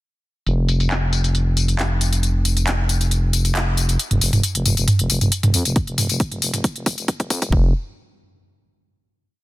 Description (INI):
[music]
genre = driving peak-time techno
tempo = 136 BPM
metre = 4/4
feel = straight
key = unclear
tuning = A4 = 439 Hz
[part]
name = growling FM bass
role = bass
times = 0.5-7.7 s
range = F1 to F2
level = -20 LUFS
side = equal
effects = sidechain pumping
[part]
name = techno drum kit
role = drums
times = 0.5-7.5 s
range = handclaps, hi-hat, tambourine, toms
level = -20 LUFS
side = equal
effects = overdrive, sidechain pumping on hats, low-pass filter on hats, sidechain pumping on perc, low-pass filter on perc, low-pass filter on snare, sidechain pumping on toms, low-pass filter on toms
[part]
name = electronic kick drum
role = drums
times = 5.8-7.6 s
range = none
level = -20 LUFS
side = equal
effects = overdrive
[sound]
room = little or no reverb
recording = dense, heavily limited modern master, high-pass filter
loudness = -17 LUFS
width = side -17 dB against mid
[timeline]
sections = 0.5-4.0 intro; 4.0-7.5 build; 7.5-9.3 final note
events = build-up 4.0-7.5; drum fill 5.8-7.5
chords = none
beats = | 0.47 0.91 1.35 1.79 | 2.23 2.67 3.11 3.55 | 4.00 4.44 4.88 5.32 | 5.76 6.20 6.64 7.08 | 7.52